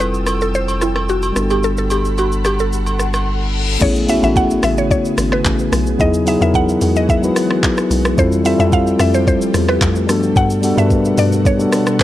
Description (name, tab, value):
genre	amapiano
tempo	110 BPM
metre	4/4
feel	straight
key	unclear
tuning	A4 = 444 Hz
part	mallet-like synth pluck	melody	0.0-12.0 s	E4 to F#5	-20 LUFS	equal	chorus, low-pass filter, analog delay
part	mellow tine electric piano	accompaniment	0.0-12.0 s	F#3 to B4	-17 LUFS	left 1 dB	low-pass filter
part	ethereal airy pad	sustained chords	0.0-12.0 s	B2 to E6	-26 LUFS	equal	ensemble chorus, built-in reverb, sidechain pumping, low-pass filter
part	warm sub bass	bass	0.0-3.8 s	F1 to G1	-20 LUFS	equal	none
part	smooth R&B drum kit	drums	0.0-12.0 s	crash cymbal, handclaps, hi-hat, kick drum, rim click, shaker	-19 LUFS	equal	none
part	agogo bells	percussion	0.0-3.3 s	none	-25 LUFS	right 2 dB	none
part	reverse cymbal and impact	sound effects	3.2-6.0 s	none	-26 LUFS	left 3 dB	none
part	hollow log drum bass	bass	3.8-11.7 s	G#1 to G2	-19 LUFS	equal	none
room	digital ambience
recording	dry, gritty hardware recording, faint mains hum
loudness	-13 LUFS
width	side -14 dB against mid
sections	0.0-3.8 A section; 3.8-12.0 B section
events	reverse cymbal 3.2-3.8; silent gap 3.3-3.8; drop 3.8-12.0; impact 3.8-6.0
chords	0.0 Fmaj9; 1.4 Gmaj9; 3.8 Amaj9; 6.0 Emaj9; 8.2 Fmaj9; 10.1 Gmaj9